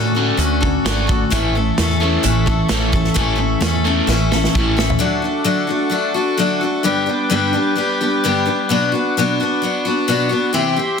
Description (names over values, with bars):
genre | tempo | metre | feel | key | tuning
folk rock and heartland rock | 130 BPM | 4/4 | straight | D major | A4 = 440 Hz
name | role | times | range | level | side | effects
picked steel-string acoustic guitar | accompaniment | 0.0-11.0 s | G2 to A4 | -17 LUFS | left 3 dB | none
accordion | sustained chords | 0.0-11.0 s | F#4 to D6 | -25 LUFS | right 3 dB | light tremolo tuning, stereo widening
overdriven electric guitar | riff | 0.0-5.0 s | A2 to D4 | -21 LUFS | right 1 dB | none
woody fretless electric bass | bass | 0.0-4.9 s | G#1 to A2 | -20 LUFS | equal | wide subtle chorus
natural country drum kit | drums | 0.4-5.0 s | hi-hat, kick drum, snare drum, toms | -21 LUFS | right 1 dB | soft clipping on snare
room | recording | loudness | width
light reverb, small room ambience | dense, heavily limited modern master | -15 LUFS | side -6 dB against mid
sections
0.0-5.0 A section; 5.0-11.0 B section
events
drum fill 4.1-5.0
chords
0.0 Dmaj7; 1.3 A; 5.0 D; 6.9 G; 8.7 Bm